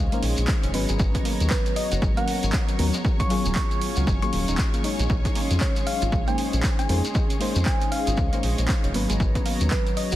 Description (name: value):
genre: deep house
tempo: 117 BPM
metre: 4/4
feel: swing 60% on 16ths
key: Bb phrygian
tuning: A4 = 439 Hz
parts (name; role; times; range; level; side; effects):
- thumb-piano-like synth pluck; melody; 0.0-10.2 s; Cb5 to Db6; -32 LUFS; left 1 dB; chorus, dub echo
- warm analog pad; sustained chords; 0.0-10.2 s; Gb3 to C6; -35 LUFS; equal; chorus, sidechain pumping
- analog pluck; arpeggios; 0.0-10.2 s; Ab3 to Gb4; -35 LUFS; right 4 dB; chorus, phaser, vintage 12-bit sampler grit, sidechain pumping, dub echo
- mellow FM electric piano; stabs; 0.0-10.2 s; Gb3 to Db5; -31 LUFS; left 3 dB; chorus, sidechain pumping, digital delay
- round analog bass; bass; 0.0-10.2 s; Eb1 to F2; -24 LUFS; equal; sidechain pumping
- granular cloud pad; texture; 0.0-10.2 s; Gb3 to Bb5; -35 LUFS; left 1 dB; built-in reverb, sidechain pumping
- string machine, violins; texture; 0.0-10.2 s; Db5; -39 LUFS; equal; ensemble chorus, sidechain pumping
- punchy analog drum machine; drums; 0.1-10.2 s; handclaps, hi-hat; -32 LUFS; right 2 dB; overdrive
- shekere; percussion; 0.1-10.2 s; none; -36 LUFS; left 3 dB; none
- electronic kick drum; drums; 0.5-9.8 s; none; -24 LUFS; equal; overdrive
room: digital ambience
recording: dense, heavily limited modern master, vinyl crackle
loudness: -21 LUFS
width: side -14 dB against mid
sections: 0.0-10.2 A section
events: none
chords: 0.0 Bbm11; 0.7 Abm11; 3.0 Ebm11; 5.1 Bbm11; 8.9 Abm11